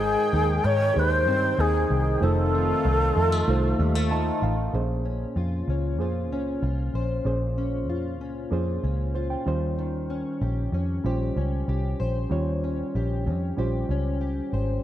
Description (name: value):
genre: indie pop, bedroom pop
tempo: 95 BPM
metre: 4/4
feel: straight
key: Bb dorian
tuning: A4 = 440 Hz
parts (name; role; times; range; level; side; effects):
- breathy long shakuhachi; melody; 0.0-4.1 s; Ab4 to Db5; -24 LUFS; equal; analog chorus, analog delay
- fingerpicked plugged-in steel-string acoustic guitar; accompaniment; 0.0-14.8 s; F2 to C5; -31 LUFS; left 4 dB; analog chorus, vibrato effect
- reed electric piano; accompaniment; 0.0-14.8 s; G3 to A5; -32 LUFS; right 4 dB; none
- warm analog pad; sustained chords; 0.0-4.7 s; Eb3 to G5; -32 LUFS; equal; chorus
- vintage muted picked electric bass; bass; 0.0-14.8 s; F1 to Ab2; -26 LUFS; equal; none
room: moderate plate reverb, RT60 2.6 s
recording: dreamy mix soaked in reverb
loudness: -23 LUFS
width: side -12 dB against mid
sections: 0.0-4.7 A section; 4.7-14.8 B section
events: reed electric piano fill 3.8-4.7, 8.8-9.8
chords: 0.0 Abmaj7; 2.2 F7; 4.7 Bbm9; 9.5 Eb13